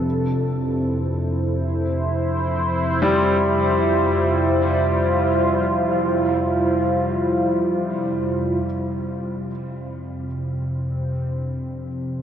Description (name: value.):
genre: dark ambient drone.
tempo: free time.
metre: none.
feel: none.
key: unclear.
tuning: A4 = 440 Hz.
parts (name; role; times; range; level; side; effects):
sweeping resonant pad; sustained chords; 0.0-12.2 s; C4 to C5; -22 LUFS; right 1 dB; chorus.
clear concert grand piano; arpeggios; 0.0-9.5 s; G2 to G3; -25 LUFS; left 2 dB; tape echo.
analog drone; drone; 0.0-12.2 s; F2 to C3; -24 LUFS; equal; chorus.
room: wet huge ambient reverb, RT60 8.2 s.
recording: worn, warbling old tape, cassette tape, warbly pitch drift.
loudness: -19 LUFS.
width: side -9 dB against mid.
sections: 0.0-8.6 A section; 8.6-12.2 B section.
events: none.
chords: 0.0 Dmadd9.